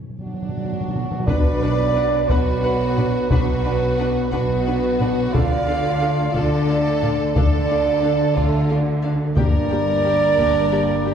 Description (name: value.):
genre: cinematic, epic orchestral film score.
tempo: 59 BPM (dotted quarters).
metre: 6/8.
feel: straight.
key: unclear.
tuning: A4 = 441 Hz.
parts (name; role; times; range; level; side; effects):
timpani; percussion; 0.0-1.3 s; B2; -28 LUFS; equal; none.
bright symphonic violin section; second line; 0.2-11.1 s; D4 to D5; -31 LUFS; left 1 dB; none.
warm trombone section; sustained chords; 0.2-11.1 s; F#3 to F4; -25 LUFS; left 1 dB; none.
dark trumpet section; stabs; 0.2-11.1 s; F#4 to F5; -22 LUFS; right 4 dB; none.
rich chamber violin section; melody; 1.3-11.1 s; F5 to G5; -40 LUFS; left 4 dB; none.
rich studio viola section; accompaniment; 1.3-11.1 s; Bb3 to B4; -30 LUFS; equal; none.
warm French horn section; sustained chords; 1.3-11.1 s; F#3 to D4; -29 LUFS; left 2 dB; none.
rich studio cello section; bass; 1.3-11.1 s; G2 to D3; -27 LUFS; right 2 dB; none.
rich studio double bass section; bass; 1.3-11.1 s; G1 to D2; -25 LUFS; right 1 dB; none.
taiko ensemble; drums; 1.3-11.0 s; none; -22 LUFS; left 1 dB; none.
room: wet scoring stage reverb, RT60 1.9 s.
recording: heard from further back in the room.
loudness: -17 LUFS.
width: side -8 dB against mid.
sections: 0.0-1.3 A section; 1.3-11.1 B section.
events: break 0.0-1.3; timpani fill 0.0-1.3; drum fill 0.2-1.3.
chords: 0.0 N.C.; 1.3 Bm; 5.3 Dm; 9.4 Gm.